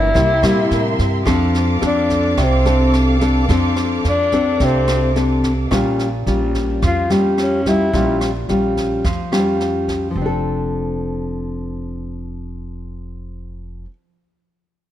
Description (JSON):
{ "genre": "bossa nova", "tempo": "108 BPM", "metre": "4/4", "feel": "straight", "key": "F major", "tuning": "A4 = 438 Hz", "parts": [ { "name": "breathy tenor saxophone", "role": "melody", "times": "0.0-8.2 s", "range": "Bb3 to F4", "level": "-20 LUFS", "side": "left 1 dB", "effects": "none" }, { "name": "nylon-string guitar", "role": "accompaniment", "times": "0.0-13.9 s", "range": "G2 to A4", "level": "-18 LUFS", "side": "left 1 dB", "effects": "none" }, { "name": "warm symphonic violin section", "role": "sustained chords", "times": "0.0-5.7 s", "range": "G4 to D6", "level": "-26 LUFS", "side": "right 1 dB", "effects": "none" }, { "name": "upright bass", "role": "bass", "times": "0.0-13.8 s", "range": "F1 to Bb2", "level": "-22 LUFS", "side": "right 1 dB", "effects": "none" }, { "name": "jazz brush drum kit", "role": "drums", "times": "0.2-10.0 s", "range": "kick drum, rim click, snare drum", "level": "-25 LUFS", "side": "right 1 dB", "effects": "none" } ], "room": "light reverb", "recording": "none", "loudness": "-15 LUFS", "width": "side -12 dB against mid", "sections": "0.0-1.3 A section; 1.3-10.2 B section; 10.2-12.4 C section", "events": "tenor saxophone solo 1.3-10.2", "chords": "0.1 C7; 1.3 F6; 5.7 Bbm6; 10.2 F6" }